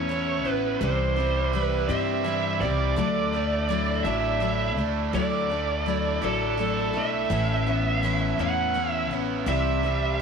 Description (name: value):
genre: rock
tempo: 55 BPM (dotted quarters)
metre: 6/8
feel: straight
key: D major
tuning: A4 = 440 Hz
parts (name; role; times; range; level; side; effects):
- bluesy overdriven lead guitar; melody; 0.0-10.2 s; A4 to F#5; -27 LUFS; right 4 dB; distortion, tape echo
- picked steel-string acoustic guitar; accompaniment; 0.0-10.2 s; A2 to E4; -29 LUFS; left 11 dB; none
- cranked stack guitar; riff; 0.0-10.2 s; A2 to E4; -31 LUFS; right 11 dB; overdrive
- upright bass; bass; 0.0-10.2 s; A1 to G2; -29 LUFS; equal; none
room: light reverb, small room ambience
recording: 1960s-style stereo with parts hard left and right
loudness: -23 LUFS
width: side -6 dB against mid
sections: 0.0-10.2 A section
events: none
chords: 0.0 Aadd9; 0.8 C; 3.0 Dadd9; 7.3 Aadd9; 9.5 C